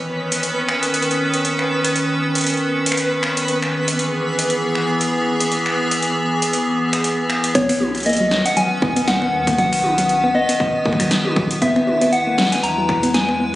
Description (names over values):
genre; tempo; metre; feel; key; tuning
IDM; 118 BPM; 4/4; swing 56% on 16ths; B major; A4 = 440 Hz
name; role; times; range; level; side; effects
icy glass pad; sustained chords; 0.0-13.6 s; D#3 to B4; -20 LUFS; equal; chorus, built-in reverb
twinkling granular texture; texture; 0.0-7.6 s; B3 to B4; -26 LUFS; equal; built-in reverb
electro analog drum machine; drums; 0.3-13.4 s; finger snaps, hi-hat, snare drum, toms; -22 LUFS; equal; overdrive
soft round pluck; arpeggios; 7.5-13.5 s; F#3 to B3; -21 LUFS; left 1 dB; chorus, dub echo
electronic kick drum; drums; 7.5-13.0 s; none; -24 LUFS; equal; none
soft struck synth lead; melody; 7.6-13.6 s; C#5 to A#5; -19 LUFS; left 1 dB; chorus, tape echo
rubbery square bass; bass; 7.6-13.5 s; E1 to E2; -32 LUFS; equal; none
room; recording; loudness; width
moderate plate reverb, RT60 1.8 s; recorded on a phone in the room, studio reverb, compression, nothing above 10.4 kHz; -16 LUFS; side -16 dB against mid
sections
0.0-7.5 A section; 7.5-13.6 B section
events
none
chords
0.0 Badd9; 3.5 E; 7.5 Badd9; 11.6 E